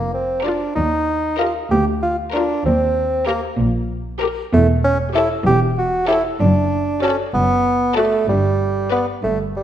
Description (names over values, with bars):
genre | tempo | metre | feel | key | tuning
cinematic, playful, whimsical film cue | 64 BPM (dotted quarters) | 6/8 | straight | D major from 4.5 s | A4 = 438 Hz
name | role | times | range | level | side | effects
mellow bassoon | accompaniment | 0.0-9.6 s | G3 to G4 | -18 LUFS | right 1 dB | none
clear studio double bass section | bass | 0.0-9.6 s | E1 to Eb2 | -23 LUFS | right 1 dB | none
rich studio cello section | bass | 0.0-9.6 s | D2 to Bb2 | -22 LUFS | equal | none
clear studio violin section | second line | 0.4-9.2 s | A4 to B4 | -26 LUFS | left 5 dB | none
rich studio violin section | melody | 0.5-9.2 s | Bb4 to Eb5 | -30 LUFS | left 5 dB | none
rich studio viola section | accompaniment | 0.5-9.2 s | F4 to B4 | -27 LUFS | left 2 dB | none
room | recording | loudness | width
moderate scoring stage reverb, RT60 1.6 s | none | -16 LUFS | side -10 dB against mid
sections
0.0-9.6 A section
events
none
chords
0.0 Bb; 0.8 Eb; 1.7 Bb/D; 2.7 Eb6; 4.5 A7/E; 6.4 D/F#; 8.3 G